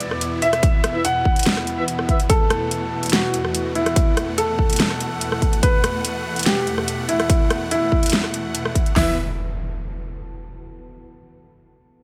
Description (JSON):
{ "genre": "heavy wobble dubstep", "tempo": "144 BPM", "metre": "4/4", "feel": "half-time", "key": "unclear", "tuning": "A4 = 442 Hz", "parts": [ { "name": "dark baby grand piano", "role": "melody", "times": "0.0-9.1 s", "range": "E4 to F#5", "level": "-26 LUFS", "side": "equal", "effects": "digital delay" }, { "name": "supersaw chords", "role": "sustained chords", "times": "0.0-9.2 s", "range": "E2 to F#5", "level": "-30 LUFS", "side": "equal", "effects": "sidechain pumping" }, { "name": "dubstep drum kit", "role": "drums", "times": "0.0-8.9 s", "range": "hi-hat, rim click, snare drum", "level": "-24 LUFS", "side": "equal", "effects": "none" }, { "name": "deep dark ambient pad", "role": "texture", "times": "0.0-10.6 s", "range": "E4 to B5", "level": "-37 LUFS", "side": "equal", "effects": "chorus, built-in reverb, sidechain pumping" }, { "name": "mellow brass ensemble", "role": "stabs", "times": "0.4-2.2 s", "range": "E4 to E5", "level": "-28 LUFS", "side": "equal", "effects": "digital delay" }, { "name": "big-room dance drum kit", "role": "drums", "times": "0.6-9.1 s", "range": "hi-hat, kick drum, snare drum, toms", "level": "-20 LUFS", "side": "equal", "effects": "overdrive" }, { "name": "impact", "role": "sound effects", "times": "9.0-10.6 s", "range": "none", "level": "-31 LUFS", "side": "equal", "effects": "none" } ], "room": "light reverb, digital ambience", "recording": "none", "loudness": "-20 LUFS", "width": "mono", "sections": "0.0-9.0 A section; 9.0-10.6 B section", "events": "none", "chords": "0.0 E5" }